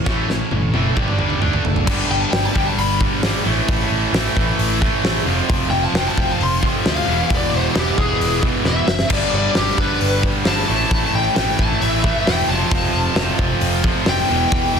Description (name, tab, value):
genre	hard rock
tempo	133 BPM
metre	4/4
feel	straight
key	unclear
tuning	A4 = 440 Hz
part	distorted electric guitar	riff	0.0-14.8 s	E2 to D4	-25 LUFS	left 12 dB	overdrive
part	distorted electric guitar	riff	0.0-14.8 s	G2 to D5	-26 LUFS	equal	overdrive
part	overdriven electric guitar	riff	0.0-14.8 s	E2 to D4	-24 LUFS	right 12 dB	none
part	picked electric bass	bass	0.1-14.8 s	E1 to D2	-24 LUFS	equal	none
part	big rock drum kit	drums	0.1-14.6 s	crash cymbal, hi-hat, kick drum, snare drum, splash cymbal, toms	-20 LUFS	equal	none
part	bluesy overdriven lead guitar	melody	2.1-14.8 s	G4 to C6	-22 LUFS	left 3 dB	distortion
room	light reverb, studio reverb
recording	dense, heavily limited modern master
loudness	-16 LUFS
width	side -6 dB against mid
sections	0.0-1.9 A section; 1.9-14.8 B section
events	drum fill 0.1-1.9, 8.7-9.1; lead electric guitar solo 1.9-14.8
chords	0.0 A; 1.0 G5; 1.4 D5; 1.9 G; 3.5 A; 5.3 F; 7.1 E; 9.1 G; 10.7 A; 12.5 F; 14.3 E